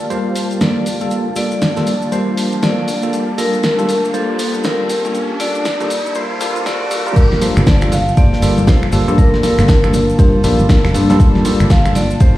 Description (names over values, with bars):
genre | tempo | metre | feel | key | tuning
deep house | 119 BPM | 4/4 | swing 61% on 16ths | G minor | A4 = 441 Hz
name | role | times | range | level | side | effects
vibraphone with medium hard mallets | melody | 0.0-12.4 s | A4 to F5 | -21 LUFS | left 1 dB | low-pass filter
hollow soft pad | sustained chords | 0.0-12.4 s | G3 to A5 | -24 LUFS | left 1 dB | chorus, sidechain pumping
maracas | percussion | 0.0-12.3 s | none | -34 LUFS | left 3 dB | none
riser | sound effects | 1.0-7.2 s | none | -28 LUFS | equal | none
granular cloud pad | texture | 0.0-7.2 s | Bb3 to A5 | -28 LUFS | right 1 dB | built-in reverb, sidechain pumping
bell-like tine electric piano | stabs | 0.1-12.4 s | G3 to C5 | -20 LUFS | equal | medium stereo tremolo, sidechain pumping, ping-pong delay
deep house drum kit | drums | 0.1-12.3 s | crash cymbal, finger snaps, hi-hat, snare drum | -21 LUFS | equal | none
electronic kick drum | drums | 7.2-12.3 s | none | -12 LUFS | equal | none
tight metal drum kit | drums | 7.2-12.3 s | ride cymbal, snare drum | -32 LUFS | right 1 dB | sidechain pumping on cymbals, high-pass filter on cymbals, low-pass filter on cymbals, high-pass filter on snare, low-pass filter on snare, high-pass filter on room, low-pass filter on room
congas | percussion | 7.4-12.1 s | none | -22 LUFS | right 2 dB | none
fingered electric bass | bass | 7.6-12.2 s | F1 to G2 | -16 LUFS | equal | sidechain pumping
room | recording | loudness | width
light reverb, studio ambience | played on a big sound system in a bare room, stone room reverb, vinyl crackle, high-pass filter | -12 LUFS | side -15 dB against mid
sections
0.0-7.2 A section; 7.2-12.4 B section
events
build-up 0.0-7.2; filter sweep on analog synth pad 0.0-7.2; filter sweep 0.0-7.2; riser 1.0-7.2; drop 7.2-12.4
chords
0.0 Gm9